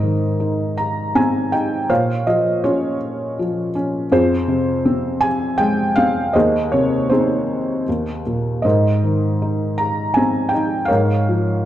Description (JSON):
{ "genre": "classical, lyrical solo piano", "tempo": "80 BPM", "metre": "3/4", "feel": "rubato", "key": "Ab major", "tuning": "A4 = 441 Hz", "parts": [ { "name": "felt-muted upright piano", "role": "solo", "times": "0.0-11.7 s", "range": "Eb2 to Bb5", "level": "-16 LUFS", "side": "equal", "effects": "none" } ], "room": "moderate recital hall reverb, RT60 1.9 s", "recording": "dark, warm production", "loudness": "-16 LUFS", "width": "side -12 dB against mid", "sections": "0.0-11.7 A section", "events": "none", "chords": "0.0 Abadd9; 1.9 Bbmadd9; 4.1 Fm; 6.3 Ab/Eb; 7.9 Eb5; 8.6 Abadd9; 10.9 Db6/Ab", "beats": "0.41 1.17 | 1.91 2.64 3.38 | 4.11 4.84 5.59 | 6.34 7.10 7.87 | 8.64 9.42 10.16 | 10.90 11.63" }